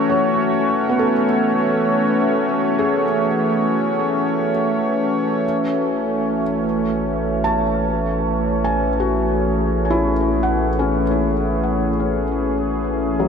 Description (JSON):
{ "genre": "ambient", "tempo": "50 BPM", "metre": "4/4", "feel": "straight", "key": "A major", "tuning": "A4 = 445 Hz", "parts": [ { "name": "warm analog pad", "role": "sustained chords", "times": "0.0-13.3 s", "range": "E3 to C#5", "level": "-19 LUFS", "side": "equal", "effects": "chorus" }, { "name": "felt-muted upright piano", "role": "arpeggios", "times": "0.0-13.3 s", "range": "F#3 to A5", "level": "-22 LUFS", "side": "left 2 dB", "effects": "ping-pong delay" }, { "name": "pedal harmonium", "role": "drone", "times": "0.0-5.6 s", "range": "A3 to C#5", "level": "-29 LUFS", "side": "right 2 dB", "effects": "stereo widening" }, { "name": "round analog bass", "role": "bass", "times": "5.4-13.3 s", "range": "A1", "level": "-26 LUFS", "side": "right 1 dB", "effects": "none" } ], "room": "wet huge ambient reverb, RT60 8.3 s", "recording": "none", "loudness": "-17 LUFS", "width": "side -6 dB against mid", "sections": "0.0-5.4 A section; 5.4-13.3 B section", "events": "none", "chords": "0.0 Amaj7" }